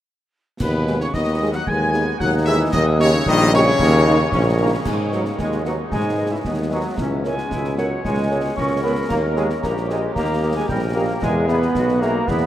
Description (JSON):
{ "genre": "military-style march for wind band", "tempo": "113 BPM", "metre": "2/4", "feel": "straight", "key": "G# minor", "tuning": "A4 = 441 Hz", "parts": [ { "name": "clear trumpet section", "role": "melody", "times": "0.6-12.1 s", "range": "B4 to G#5", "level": "-27 LUFS", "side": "left 2 dB", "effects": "none" }, { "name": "clear euphonium", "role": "second line", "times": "0.6-4.8 s", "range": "B2 to G#3", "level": "-26 LUFS", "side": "left 2 dB", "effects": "none" }, { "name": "mellow wooden piccolo", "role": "second line", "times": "0.6-12.5 s", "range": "D#5 to G#6", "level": "-28 LUFS", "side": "equal", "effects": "none" }, { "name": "warm woodwind section", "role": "second line", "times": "0.6-12.4 s", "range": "B3 to G#5", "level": "-28 LUFS", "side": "left 2 dB", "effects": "none" }, { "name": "clear trombone section", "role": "sustained chords", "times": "0.6-12.5 s", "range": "D#3 to D#4", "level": "-24 LUFS", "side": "equal", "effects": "none" }, { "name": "clear tuba", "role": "bass", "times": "0.6-12.5 s", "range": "A#1 to G#2", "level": "-21 LUFS", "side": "equal", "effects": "none" }, { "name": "concert snare drum, clash cymbals and concert bass drum", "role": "drums", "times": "0.6-12.5 s", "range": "none", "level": "-29 LUFS", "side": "equal", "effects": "none" }, { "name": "mellow French horn section", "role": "accompaniment", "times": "0.9-12.1 s", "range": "G#3 to E5", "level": "-27 LUFS", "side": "right 1 dB", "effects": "none" } ], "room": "wet huge ambient reverb, RT60 8.2 s", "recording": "in a vast, echoing space", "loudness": "-17 LUFS", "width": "side -12 dB against mid", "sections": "0.6-4.9 A section; 4.9-12.5 B section", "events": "none", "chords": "0.6 G#m/D#; 2.7 D#7; 4.9 G#m; 7.0 A#dim/C#; 9.1 D#; 11.2 E" }